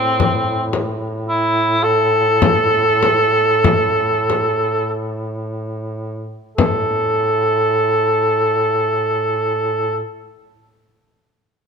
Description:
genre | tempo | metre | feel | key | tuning
caucasian folk, Caucasian lament | 36-57 BPM | 3/4 | rubato | A minor | A4 = 440 Hz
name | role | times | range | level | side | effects
mellow cor anglais | melody | 0.0-10.0 s | C4 to A4 | -16 LUFS | right 1 dB | none
warm duduk | drone | 0.0-10.0 s | A2 | -25 LUFS | right 1 dB | none
frame drum | percussion | 0.2-7.4 s | none | -19 LUFS | left 5 dB | none
room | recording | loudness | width
moderate recital hall reverb, RT60 1.6 s | close, detailed microphones | -15 LUFS | side -6 dB against mid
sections
0.0-6.6 A section; 6.6-11.2 B section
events
slowing down 0.0-6.6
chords
none

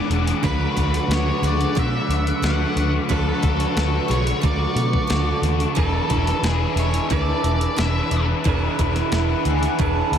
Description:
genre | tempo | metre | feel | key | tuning
rock, shoegaze and dream pop | 90 BPM | 4/4 | straight | unclear | A4 = 440 Hz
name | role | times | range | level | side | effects
phased analog pad | sustained chords | 0.0-10.2 s | B4 to D6 | -31 LUFS | left 1 dB | phaser, chorus
direct-recorded clean electric guitar | riff | 0.0-10.2 s | D3 to B4 | -26 LUFS | right 7 dB | reverse reverb
overdriven semi-hollow guitar | riff | 0.0-10.2 s | E2 to G#4 | -26 LUFS | left 7 dB | analog chorus
vintage muted fingered electric bass | bass | 0.1-10.2 s | E1 to B2 | -22 LUFS | equal | none
clean 12-bit digital drum machine | drums | 0.1-10.2 s | hi-hat, kick drum, snare drum | -26 LUFS | equal | none
picked twelve-string acoustic guitar | arpeggios | 0.4-10.2 s | E4 to A5 | -30 LUFS | right 6 dB | lush chorus, diffuse ambient delay
octave-fuzz lead guitar | melody | 0.5-8.2 s | A4 to F#5 | -29 LUFS | left 1 dB | distortion, diffuse ambient delay
room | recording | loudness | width
moderate huge ambient reverb, RT60 4.5 s | dreamy mix soaked in reverb | -18 LUFS | side -8 dB against mid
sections
0.0-10.2 A section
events
none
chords
0.4 D6; 5.8 E7sus4

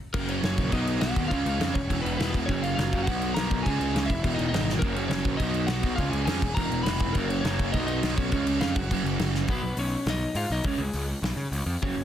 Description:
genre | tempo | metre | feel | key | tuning
punk rock | 205 BPM | 4/4 | straight | F# major | A4 = 441 Hz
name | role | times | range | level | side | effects
lightly driven lead guitar | melody | 0.1-12.0 s | G#3 to B5 | -32 LUFS | left 2 dB | none
sludgy distorted guitar | riff | 0.1-11.9 s | E2 to C#4 | -28 LUFS | right 2 dB | overdrive
fuzz picked electric bass | bass | 0.1-12.0 s | E1 to C#3 | -30 LUFS | equal | overdrive
loose indie drum kit | drums | 0.1-11.9 s | crash cymbal, hi-hat, kick drum, snare drum | -30 LUFS | equal | none
room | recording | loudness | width
light reverb | dense, heavily limited modern master | -24 LUFS | side -10 dB against mid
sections
0.1-9.5 A section; 9.5-12.0 B section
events
drum fill 4.7, 9.3; half time 9.5-12.0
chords
0.1 F#; 0.7 B; 1.3 C#; 1.8 E5; 2.5 F#5; 3.1 B5; 3.7 C#5; 4.1 E; 4.8 F#; 5.4 B; 6.0 C#; 6.4 E; 7.2 F#; 7.7 B; 8.3 C#; 8.8 F#5; 9.5 B; 10.7 C#5

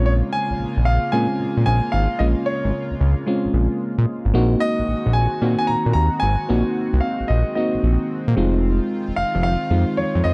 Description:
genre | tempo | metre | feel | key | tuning
R&B | 112 BPM | 4/4 | swing 66% on 16ths | Bb minor | A4 = 440 Hz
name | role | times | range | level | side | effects
clear baby grand piano | melody | 0.0-10.3 s | Db5 to Bb5 | -26 LUFS | equal | none
FM electric piano | accompaniment | 0.0-10.3 s | Ab3 to Gb4 | -26 LUFS | equal | none
chorused pulse-width pad | sustained chords | 0.0-10.3 s | Db3 to Gb4 | -32 LUFS | equal | none
fat analog bass | bass | 0.0-10.3 s | F1 to Bb2 | -21 LUFS | equal | none
room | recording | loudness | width
little or no reverb | dark, warm production | -20 LUFS | mono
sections
0.0-10.3 A section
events
none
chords
0.0 Bbm7; 4.3 Ab7; 8.4 Fm7

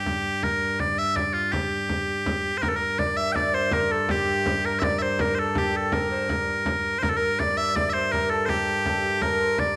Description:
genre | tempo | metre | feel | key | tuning
medieval dance | 164 BPM | 3/4 | straight | G dorian | A4 = 441 Hz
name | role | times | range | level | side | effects
loud bright bagpipes | melody | 0.0-9.8 s | F4 to G5 | -26 LUFS | equal | slapback echo
clear viola da gamba | drone | 0.0-9.8 s | G2 | -35 LUFS | equal | none
frame drum | percussion | 0.1-9.8 s | none | -33 LUFS | equal | none
breathy mellow alto recorder | second line | 2.6-9.8 s | G4 to E5 | -33 LUFS | equal | none
hammered dulcimer | second line | 2.6-9.8 s | G4 to E5 | -35 LUFS | equal | none
room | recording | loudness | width
moderate echo chamber reverb, RT60 1.6 s, small room ambience | none | -24 LUFS | mono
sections
0.0-2.6 A section; 2.6-9.8 A section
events
none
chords
none

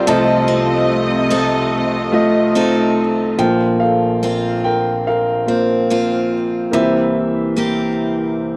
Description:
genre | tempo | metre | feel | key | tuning
acoustic folk-pop ballad | 72 BPM | 4/4 | straight | unclear | A4 = 439 Hz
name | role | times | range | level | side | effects
warm grand piano | melody | 0.0-8.6 s | Bb1 to A5 | -18 LUFS | equal | cassette tape
muted studio string section | sustained chords | 0.0-3.4 s | C3 to Eb5 | -24 LUFS | equal | cassette tape
picked steel-string acoustic guitar | arpeggios | 0.0-8.6 s | E3 to A4 | -22 LUFS | equal | cassette tape
room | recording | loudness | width
moderate spring reverb, RT60 2.7 s | home recording on cassette | -16 LUFS | mono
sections
0.0-3.4 A section; 3.4-8.6 B section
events
none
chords
0.1 F7/C; 3.4 Bbsus2; 6.7 C7

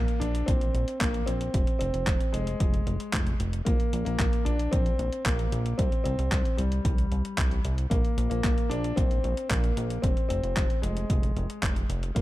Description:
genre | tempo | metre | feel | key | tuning
italo disco | 113 BPM | 4/4 | straight | Bb major | A4 = 440 Hz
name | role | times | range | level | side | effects
warm concert grand piano | melody | 0.0-12.2 s | G3 to D4 | -31 LUFS | left 1 dB | ping-pong delay
chorused synth bass | bass | 0.0-12.2 s | F1 to C2 | -29 LUFS | equal | none
clean 12-bit digital drum machine | drums | 0.1-12.2 s | handclaps, hi-hat | -35 LUFS | equal | none
electronic kick drum | drums | 0.5-12.2 s | none | -27 LUFS | equal | none
room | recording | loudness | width
little or no reverb | dark, warm production | -24 LUFS | side -16 dB against mid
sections
0.0-12.2 A section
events
none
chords
0.0 Bbsus2; 1.5 Fm; 3.7 Bbsus2; 5.8 C5; 7.9 Bbsus2; 10.0 Fm

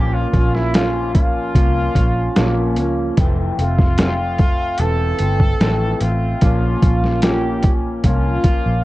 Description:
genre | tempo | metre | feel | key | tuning
indie pop, bedroom pop | 74 BPM | 4/4 | straight | unclear | A4 = 440 Hz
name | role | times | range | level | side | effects
clear trumpet | melody | 0.0-8.8 s | E4 to A4 | -24 LUFS | equal | lush chorus, plate reverb
electric guitar through a small old amp | accompaniment | 0.0-8.8 s | F2 to Db4 | -22 LUFS | left 1 dB | wide subtle chorus, warbly pitch drift, plate reverb
vintage muted fingered electric bass | bass | 0.0-8.8 s | E1 to Db2 | -20 LUFS | equal | none
lo-fi sampler-style drum kit | drums | 0.3-8.6 s | hi-hat, kick drum, snare drum | -16 LUFS | equal | overdrive
room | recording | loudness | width
light reverb | worn, warbling old tape, cassette tape, warbly pitch drift | -14 LUFS | side -17 dB against mid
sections
0.0-8.8 A section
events
none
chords
0.0 Bbm; 3.2 Fmaj7; 6.4 Bbm

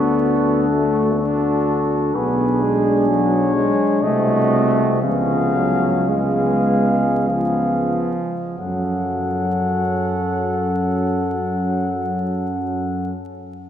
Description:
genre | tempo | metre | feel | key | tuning
classical, hymn-like piece for brass band | 45-67 BPM | 3/4 | rubato | F# minor | A4 = 437 Hz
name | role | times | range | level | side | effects
mellow cornet | melody | 0.0-13.1 s | A4 to F#5 | -24 LUFS | left 4 dB | none
mellow flugelhorn | second line | 0.0-13.1 s | F#4 to A4 | -26 LUFS | right 3 dB | none
clear trombone | accompaniment | 0.0-13.1 s | E#3 to D4 | -23 LUFS | right 2 dB | none
mellow trombone section | accompaniment | 0.0-13.1 s | B3 to D4 | -24 LUFS | left 2 dB | none
mellow tuba | bass | 0.0-13.1 s | B1 to F#2 | -23 LUFS | equal | none
room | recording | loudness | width
wet cathedral reverb, RT60 5.2 s | minimal, uncompressed stereo recording, vinyl crackle | -17 LUFS | side -9 dB against mid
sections
0.0-8.6 A section; 8.6-12.5 B section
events
slowing down 0.7-8.6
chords
0.0 D; 2.2 G#dim/B; 4.0 Cdim7; 5.0 C#7; 8.6 F#m

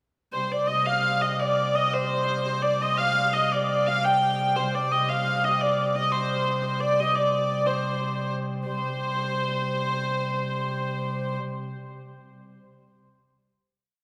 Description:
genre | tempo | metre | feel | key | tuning
medieval dance | 111-127 BPM (dotted quarters) | 6/8 | straight | C minor | A4 = 439 Hz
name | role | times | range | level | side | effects
dark hurdy-gurdy | melody | 0.3-11.4 s | C5 to G5 | -26 LUFS | equal | none
pipe organ, sparkling flutes | drone | 0.3-11.4 s | C3 to G3 | -33 LUFS | equal | none
room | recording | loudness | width
wet church reverb, RT60 3.8 s | recorded in a church or concert hall | -25 LUFS | mono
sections
0.3-8.7 A section; 8.7-10.6 final chord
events
speeding up 0.3-10.6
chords
none

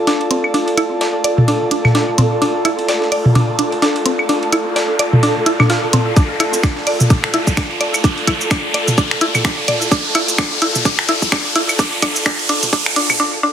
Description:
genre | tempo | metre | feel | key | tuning
minimal techno | 128 BPM | 4/4 | swing 58% on 16ths | D minor | A4 = 439 Hz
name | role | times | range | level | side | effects
riser | sound effects | 1.4-13.2 s | none | -22 LUFS | equal | none
airy breathy pad | texture | 0.0-13.2 s | F4 to A5 | -23 LUFS | equal | chorus, sidechain pumping
flickering grainy texture | texture | 0.0-13.2 s | A4 | -25 LUFS | right 2 dB | built-in reverb, sidechain pumping
mallet-like synth pluck | riff | 0.1-13.5 s | C4 to D5 | -19 LUFS | equal | chorus, sidechain pumping, tape echo
breakbeat sampler-style drum kit | drums | 0.1-13.2 s | hi-hat, ride cymbal, snare drum | -27 LUFS | right 1 dB | sidechain pumping on cymbals, high-pass filter on cymbals, high-pass filter on snare, sidechain pumping on hats, high-pass filter on hats
minimal click drum kit | drums | 0.3-13.2 s | cabasa, finger snaps, hi-hat | -19 LUFS | right 1 dB | overdrive, soft clipping on snare
electronic claves and toms | percussion | 0.4-13.2 s | none | -16 LUFS | equal | none
electronic kick drum | drums | 6.2-12.8 s | none | -15 LUFS | equal | overdrive
room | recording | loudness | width
wet studio reverb, RT60 0.6 s | dense, heavily limited modern master, high-pass filter | -13 LUFS | side -9 dB against mid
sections
0.0-13.5 A section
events
build-up 0.0-13.5; filter sweep 0.0-13.5; riser 1.4-13.2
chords
0.0 Dm

